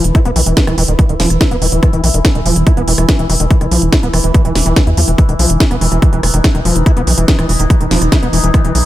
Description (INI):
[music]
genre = psychedelic trance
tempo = 143 BPM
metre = 4/4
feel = straight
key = unclear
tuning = A4 = 440 Hz
[part]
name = overtone-sweeping drone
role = sustained chords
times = 0.0-8.9 s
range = E3 to E4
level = -21 LUFS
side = equal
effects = chorus, built-in reverb, phaser, sidechain pumping
[part]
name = overdriven acid bass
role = riff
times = 0.0-8.8 s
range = D#3 to E4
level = -18 LUFS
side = moving between left 4 dB and right 3 dB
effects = auto-pan, sidechain pumping, digital delay
[part]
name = tight sequencer bass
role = bass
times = 0.0-8.8 s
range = E1 to E2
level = -14 LUFS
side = equal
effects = none
[part]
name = techno drum kit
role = drums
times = 0.0-8.8 s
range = hi-hat, rim click, snare drum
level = -17 LUFS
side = right 1 dB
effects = none
[part]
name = electronic kick drum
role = drums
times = 0.1-8.6 s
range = none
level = -12 LUFS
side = equal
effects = none
[sound]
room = little or no reverb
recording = none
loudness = -9 LUFS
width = side -14 dB against mid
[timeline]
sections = 0.0-8.9 A section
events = none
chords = 0.0 E5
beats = | 0.15 0.57 0.99 1.41 | 1.83 2.25 2.67 3.09 | 3.51 3.92 4.34 4.76 | 5.18 5.60 6.02 6.44 | 6.86 7.28 7.70 8.12 | 8.54